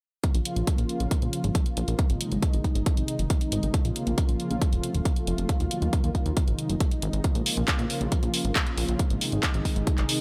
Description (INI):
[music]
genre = uplifting trance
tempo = 137 BPM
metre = 4/4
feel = straight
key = Bb minor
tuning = A4 = 441 Hz
[part]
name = lush unison pad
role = sustained chords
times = 0.2-10.1 s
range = C3 to F4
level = -33 LUFS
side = equal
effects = chorus, sidechain pumping
[part]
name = electronic kick drum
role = drums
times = 0.2-10.0 s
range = none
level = -27 LUFS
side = equal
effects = none
[part]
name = house drum kit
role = drums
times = 0.2-10.2 s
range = handclaps, hi-hat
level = -33 LUFS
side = equal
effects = none
[part]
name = plucky analog bass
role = bass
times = 0.3-10.0 s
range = Eb1 to Eb2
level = -30 LUFS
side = equal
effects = tube saturation, sidechain pumping
[sound]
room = digital ambience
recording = none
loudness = -26 LUFS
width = mono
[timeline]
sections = 0.2-10.2 A section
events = none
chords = 0.2 Bbm; 2.0 Ab; 3.7 Bbm; 4.6 F; 5.5 Ebmadd9; 6.4 Ab; 7.2 Bbm; 9.0 Ab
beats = | 0.24 0.67 1.11 1.55 | 1.99 2.43 2.86 3.30 | 3.74 4.18 4.62 5.05 | 5.49 5.93 6.37 6.80 | 7.24 7.68 8.12 8.56 | 8.99 9.43 9.87